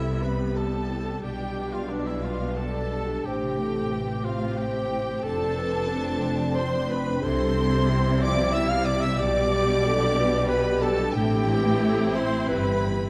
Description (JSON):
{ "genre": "cinematic, emotional film score for orchestra", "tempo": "90 BPM", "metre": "3/4", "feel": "rubato", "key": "C major", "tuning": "A4 = 440 Hz", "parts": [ { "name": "warm symphonic violin section", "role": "melody", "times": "0.0-13.1 s", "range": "D5 to F6", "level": "-37 LUFS", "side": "equal", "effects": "none" }, { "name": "clear symphonic violin section", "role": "second line", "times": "0.0-13.1 s", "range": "D4 to F5", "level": "-38 LUFS", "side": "equal", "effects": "none" }, { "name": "warm clarinet", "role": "second line", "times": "0.0-12.9 s", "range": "D4 to F5", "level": "-34 LUFS", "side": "equal", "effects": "none" }, { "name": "warm cor anglais", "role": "second line", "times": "0.0-12.9 s", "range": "D4 to F5", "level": "-36 LUFS", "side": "equal", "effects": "none" }, { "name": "rich symphonic viola section", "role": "accompaniment", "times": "0.0-13.1 s", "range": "G3 to G4", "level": "-35 LUFS", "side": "equal", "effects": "none" }, { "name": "mellow French horn section", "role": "sustained chords", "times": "0.0-13.1 s", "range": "F3 to C5", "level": "-33 LUFS", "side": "equal", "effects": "none" }, { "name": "concert harp", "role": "arpeggios", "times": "0.0-13.1 s", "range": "F2 to A5", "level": "-35 LUFS", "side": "equal", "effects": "none" }, { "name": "rich symphonic cello section", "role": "bass", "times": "0.0-13.1 s", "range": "F2 to C3", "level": "-33 LUFS", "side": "equal", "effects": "none" }, { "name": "rich symphonic double bass section", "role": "bass", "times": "0.0-13.1 s", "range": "F1 to C2", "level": "-32 LUFS", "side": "equal", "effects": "none" } ], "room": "moderate scoring stage reverb, RT60 2.1 s", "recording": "dark, warm production", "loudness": "-25 LUFS", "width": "mono", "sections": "0.0-13.1 A section", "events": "none", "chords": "0.0 Cmaj7; 1.2 G/B; 3.3 Am7; 5.2 F6; 7.2 Cmaj7; 9.2 G/B; 11.2 Am7" }